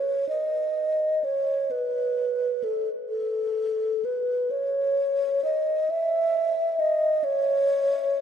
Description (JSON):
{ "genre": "classical, free, expressive piece for unaccompanied alto flute", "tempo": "43 BPM (dotted quarters)", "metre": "6/8", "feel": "rubato", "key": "unclear", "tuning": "A4 = 440 Hz", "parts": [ { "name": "mellow wooden-headed alto flute", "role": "solo", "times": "0.0-8.2 s", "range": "A4 to E5", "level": "-23 LUFS", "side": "equal", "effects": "none" } ], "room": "wet cathedral reverb, RT60 5.2 s", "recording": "dark, warm production", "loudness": "-23 LUFS", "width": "side -8 dB against mid", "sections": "0.0-8.2 A section", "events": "none", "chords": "none" }